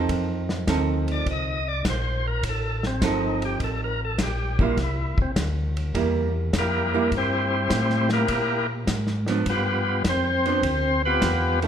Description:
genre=soul jazz organ trio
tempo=102 BPM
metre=4/4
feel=swing 69% on 8ths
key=C mixolydian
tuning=A4 = 445 Hz
part: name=archtop guitar, miked and amplified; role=accompaniment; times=0.0-11.7 s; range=Eb3 to A4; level=-27 LUFS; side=right 5 dB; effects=none
part: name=mellow tonewheel organ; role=bass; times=0.0-11.7 s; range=G1 to Bb2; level=-27 LUFS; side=left 1 dB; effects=chorus vibrato, slow rotary speaker
part: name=warm soul drum kit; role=drums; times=0.1-11.7 s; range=hi-hat, kick drum, ride cymbal, snare drum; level=-29 LUFS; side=left 1 dB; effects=none
part: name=percussive tonewheel organ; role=melody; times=1.1-11.6 s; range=Bb3 to Eb5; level=-25 LUFS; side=left 1 dB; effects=slow rotary speaker, overdrive
room=moderate recital hall reverb, RT60 1.8 s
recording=recorded in a church or concert hall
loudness=-21 LUFS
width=side -8 dB against mid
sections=0.0-11.7 A section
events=tonewheel organ solo 0.0-11.7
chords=0.1 F7; 4.8 C7; 9.5 G7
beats=| 0.09 0.68 1.26 1.85 | 2.44 3.02 3.61 4.19 | 4.78 5.36 5.95 6.53 | 7.12 7.71 8.29 8.88 | 9.46 10.05 10.64 11.22

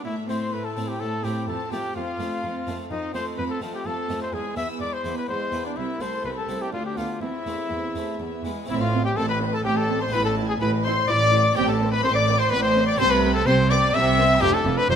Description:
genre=classical, baroque-style concerto movement with solo episodes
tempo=126 BPM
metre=3/4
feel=straight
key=A minor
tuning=A4 = 439 Hz
part: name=clear trumpet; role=melody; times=0.0-15.0 s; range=D4 to E5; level=-25 LUFS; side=left 2 dB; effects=none
part: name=rich chamber violin section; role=melody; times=0.0-15.0 s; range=B4 to E6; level=-32 LUFS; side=left 4 dB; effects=none
part: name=warm chamber violin section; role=second line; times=0.0-14.9 s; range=E4 to E6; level=-30 LUFS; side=left 2 dB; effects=none
part: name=dark chamber viola section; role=accompaniment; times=0.0-15.0 s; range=G#3 to F4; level=-32 LUFS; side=right 2 dB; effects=none
part: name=harpsichord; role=accompaniment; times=0.0-15.0 s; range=C2 to B4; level=-32 LUFS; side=left 1 dB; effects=none
part: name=warm studio cello section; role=bass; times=0.0-15.0 s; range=C2 to C3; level=-29 LUFS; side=right 3 dB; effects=none
part: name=rich chamber double bass section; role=bass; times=8.7-15.0 s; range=F1 to C2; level=-26 LUFS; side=right 4 dB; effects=none
room=light reverb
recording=close, detailed microphones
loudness=-21 LUFS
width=side -8 dB against mid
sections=0.0-8.7 A section; 8.7-15.0 B section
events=none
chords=0.0 Am; 1.5 F; 4.3 E; 5.8 Am/C; 6.7 Bdim/D; 7.2 Am/E; 8.2 E; 8.7 Am; 10.1 E7/A; 11.6 Am; 13.0 Am/C; 14.4 Dm/F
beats=| 0.05 0.53 1.00 | 1.48 1.96 2.43 | 2.90 3.38 3.86 | 4.33 4.81 5.29 | 5.77 6.25 6.73 | 7.22 7.71 8.20 | 8.68 9.17 9.65 | 10.13 10.61 11.08 | 11.56 12.04 12.51 | 12.99 13.46 13.94 | 14.41 14.89

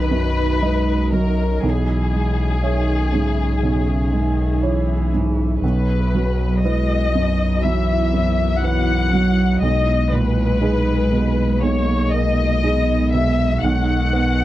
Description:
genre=neoclassical piano and strings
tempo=60 BPM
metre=4/4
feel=rubato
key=unclear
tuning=A4 = 441 Hz
part: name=muted chamber violin section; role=melody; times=0.0-14.4 s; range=G#4 to F#5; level=-24 LUFS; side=left 4 dB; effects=none
part: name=muted cello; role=second line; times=0.0-14.4 s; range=C#3 to B3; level=-25 LUFS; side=right 2 dB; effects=none
part: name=felt-muted upright piano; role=accompaniment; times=0.0-14.4 s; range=B1 to E5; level=-22 LUFS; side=right 3 dB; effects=none
part: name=ethereal airy pad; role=sustained chords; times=0.0-14.4 s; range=G#3 to E5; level=-29 LUFS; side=equal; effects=ensemble chorus, built-in reverb
part: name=saturated sub bass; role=bass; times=0.0-14.4 s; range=B1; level=-20 LUFS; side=left 1 dB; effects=none
room=little or no reverb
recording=dry, close 1970s-style studio recording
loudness=-16 LUFS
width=side -14 dB against mid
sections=0.0-14.4 A section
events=none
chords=0.0 B; 1.6 C#m/B; 5.6 Esus2/B; 9.6 G#madd9/B; 13.6 B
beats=0.63 | 1.63 2.63 3.63 4.63 | 5.62 6.62 7.63 8.63 | 9.62 10.61 11.62 12.63 | 13.63

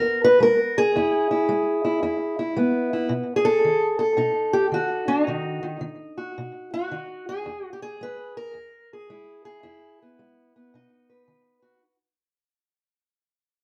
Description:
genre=acoustic country blues, solo or duo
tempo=110 BPM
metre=4/4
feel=swing 64% on 8ths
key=E major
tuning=A4 = 439 Hz
part: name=fingerpicked steel-string acoustic guitar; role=solo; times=0.0-11.8 s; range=E2 to B4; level=-23 LUFS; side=equal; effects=slapback echo
room=moderate studio reverb, RT60 0.6 s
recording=worn, warbling old tape, cassette tape, warbly pitch drift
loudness=-22 LUFS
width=mono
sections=0.0-11.8 A section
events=fade-out 0.0-11.8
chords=0.0 E; 3.1 B; 7.5 E; 10.7 B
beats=0.40 | 0.94 1.48 2.03 2.57 | 3.11 3.66 4.20 4.74 | 5.29 5.83 6.38 6.92 | 7.47 8.01 8.56 9.11 | 9.65 10.20 10.74 11.29

